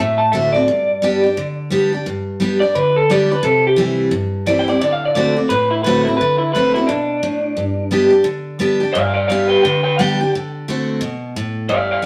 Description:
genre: rock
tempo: 174 BPM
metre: 4/4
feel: swing 61% on 8ths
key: G major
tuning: A4 = 440 Hz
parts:
  - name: electric guitar through a small old amp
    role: melody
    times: 0.0-12.1 s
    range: D4 to A5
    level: -18 LUFS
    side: equal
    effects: none
  - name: picked steel-string acoustic guitar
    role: accompaniment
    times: 0.0-12.1 s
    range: G2 to G4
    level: -20 LUFS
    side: equal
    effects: none
room: moderate stone room reverb, RT60 1.0 s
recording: rough rehearsal-room recording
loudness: -17 LUFS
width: mono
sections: 0.0-2.1 A section; 2.1-12.1 B section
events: clean electric guitar solo 2.1-12.1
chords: 0.0 D7; 0.7 G; 3.4 C; 4.8 D7; 7.6 G; 10.3 D7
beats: 0.34 | 0.68 1.03 1.37 1.72 | 2.06 2.41 2.75 3.10 | 3.44 3.79 4.13 4.48 | 4.82 5.17 5.51 5.85 | 6.20 6.54 6.89 7.23 | 7.57 7.92 8.26 8.61 | 8.95 9.29 9.64 9.98 | 10.32 10.67 11.01 11.36 | 11.70 12.04

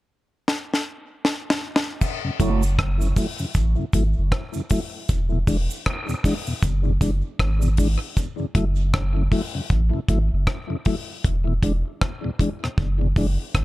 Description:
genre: dub reggae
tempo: 78 BPM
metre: 4/4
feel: swing 59% on 16ths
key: F# minor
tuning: A4 = 440 Hz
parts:
  - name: deep reggae drum kit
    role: drums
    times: 0.5-13.6 s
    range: crash cymbal, hi-hat, kick drum, rim click, snare drum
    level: -23 LUFS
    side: equal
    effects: none
  - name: cabasa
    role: percussion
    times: 2.0-8.4 s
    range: none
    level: -40 LUFS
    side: right 10 dB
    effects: tape echo
  - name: mellow tonewheel organ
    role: accompaniment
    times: 2.2-13.3 s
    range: E2 to E4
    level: -27 LUFS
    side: left 1 dB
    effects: slow rotary speaker, low-pass filter, tape echo
  - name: electric guitar at the edge of break-up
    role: accompaniment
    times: 2.4-2.6 s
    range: A3 to C#5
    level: -28 LUFS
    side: right 8 dB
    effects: phaser, low-pass filter, tape echo
  - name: warm sub bass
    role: bass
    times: 2.4-13.6 s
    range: E1 to A1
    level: -21 LUFS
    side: equal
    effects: none
room: small room ambience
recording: dark, warm production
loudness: -20 LUFS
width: side -18 dB against mid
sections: 0.0-2.0 A section; 2.0-13.6 B section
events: drum fill 0.5-2.0; filter sweep 2.0-13.6; part muted 8.2-13.6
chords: 0.0 N.C.; 2.0 F#m7; 5.1 E; 8.2 F#m; 11.2 E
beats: 0.47 1.24 | 2.01 2.78 3.55 4.32 | 5.09 5.86 6.63 7.40 | 8.17 8.94 9.71 10.47 | 11.24 12.01 12.78 13.55

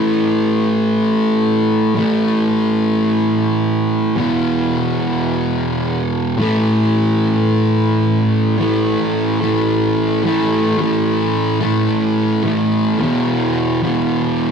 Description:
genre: rock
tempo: 109 BPM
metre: 4/4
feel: straight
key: unclear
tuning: A4 = 440 Hz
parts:
  - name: fuzz guitar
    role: solo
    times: 0.0-14.5 s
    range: E2 to A3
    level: -14 LUFS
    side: equal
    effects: distortion
room: wet small room reverb, RT60 0.5 s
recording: rough rehearsal-room recording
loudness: -14 LUFS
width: side -6 dB against mid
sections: 0.0-8.6 A section; 8.6-14.5 B section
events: none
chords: 0.0 A5; 4.2 E5; 6.4 A5; 13.0 E5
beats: 0.31 0.86 1.42 | 1.97 2.52 3.07 3.62 | 4.17 4.73 5.28 5.83 | 6.38 6.93 7.48 8.03 | 8.59 9.14 9.69 10.24 | 10.79 11.34 11.89 12.44 | 12.99 13.54 14.09

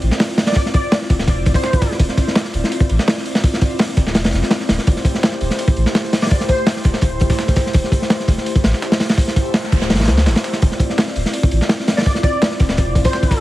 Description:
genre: drum and bass, jungle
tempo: 167 BPM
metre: 4/4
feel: straight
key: D minor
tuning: A4 = 440 Hz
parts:
  - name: airy breathy pad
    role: sustained chords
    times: 0.0-13.4 s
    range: A3 to D5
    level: -24 LUFS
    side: equal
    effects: chorus
  - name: soft dub sub bass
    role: bass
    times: 0.0-13.0 s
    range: D1 to D2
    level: -19 LUFS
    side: equal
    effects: tube saturation
  - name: crunchy breakbeat drum kit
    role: drums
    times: 0.0-13.4 s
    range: hi-hat, kick drum, snare drum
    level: -16 LUFS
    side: equal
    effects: none
  - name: dusty soul sampler-style drum kit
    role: drums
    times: 0.0-13.4 s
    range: hi-hat, snare drum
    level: -30 LUFS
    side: right 1 dB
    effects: none
  - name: plucky unison lead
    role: melody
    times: 0.5-1.9, 6.2-6.8, 12.0-13.4 s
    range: C5 to D5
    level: -24 LUFS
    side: equal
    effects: ensemble chorus, dub echo
  - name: noise sweep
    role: sound effects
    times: 9.4-10.6 s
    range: none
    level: -32 LUFS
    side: right 2 dB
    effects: none
room: light reverb, small room ambience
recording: heavily compressed radio sound, vinyl crackle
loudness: -14 LUFS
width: side -16 dB against mid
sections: 0.0-13.4 A section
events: noise sweep 9.4-10.6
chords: 0.0 Dm9; 4.9 Am7/D; 10.6 Dm9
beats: 0.20 | 0.56 0.92 1.28 1.64 | 2.00 2.36 2.72 3.08 | 3.44 3.79 4.15 4.51 | 4.87 5.23 5.59 5.95 | 6.31 6.67 7.03 7.39 | 7.75 8.11 8.46 8.82 | 9.18 9.54 9.90 10.26 | 10.62 10.98 11.34 11.70 | 12.06 12.42 12.78 13.13

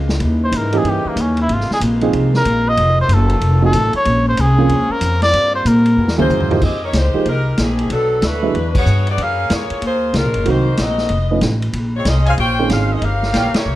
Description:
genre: jazz, big band swing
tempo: 187 BPM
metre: 4/4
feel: swing 64% on 8ths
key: F minor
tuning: A4 = 440 Hz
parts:
  - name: clear saxophone section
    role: sustained chords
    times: 0.0-6.6 s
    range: C3 to Gb4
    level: -26 LUFS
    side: equal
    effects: none
  - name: upright bass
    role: bass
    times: 0.0-13.8 s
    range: F1 to Bb2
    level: -16 LUFS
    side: equal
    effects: none
  - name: vintage drum kit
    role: drums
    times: 0.1-13.6 s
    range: crash cymbal, hi-hat, kick drum, ride cymbal, snare drum, toms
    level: -23 LUFS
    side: equal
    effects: none
  - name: trumpet with cup mute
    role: melody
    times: 0.4-6.2 s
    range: Bb3 to Eb5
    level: -17 LUFS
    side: equal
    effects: none
  - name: warm baby grand piano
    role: accompaniment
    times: 0.7-13.0 s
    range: D3 to B4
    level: -19 LUFS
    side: right 4 dB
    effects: none
  - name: bright saxophone section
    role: melody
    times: 6.2-13.8 s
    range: Eb3 to G5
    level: -19 LUFS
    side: left 1 dB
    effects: none
  - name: warm trumpet section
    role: stabs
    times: 12.3-13.5 s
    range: Eb4 to Ab5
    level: -24 LUFS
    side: right 1 dB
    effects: none
room: light reverb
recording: none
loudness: -13 LUFS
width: side -15 dB against mid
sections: 0.0-6.6 A section; 6.6-13.8 B section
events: muted trumpet solo 0.0-6.6; drum fill 6.0-6.6; band accent 8.7, 13.5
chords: 0.2 Eb7b9; 1.5 Ab69; 2.8 F7b9; 4.1 Bbm9; 5.3 Gm7; 6.0 Gb9; 6.6 Fm11; 7.9 Bm7; 8.5 E9; 9.2 Gbmaj13; 10.5 Cm7b5; 11.1 Faug7; 11.7 Bbm11; 13.0 Gm7b5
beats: | 0.21 0.53 0.85 1.17 | 1.49 1.81 2.13 2.45 | 2.77 3.10 3.42 3.73 | 4.05 4.38 4.70 5.02 | 5.34 5.66 5.98 6.30 | 6.62 6.94 7.26 7.58 | 7.90 8.22 8.54 8.86 | 9.18 9.50 9.82 10.14 | 10.46 10.78 11.10 11.42 | 11.74 12.06 12.38 12.70 | 13.02 13.34 13.66

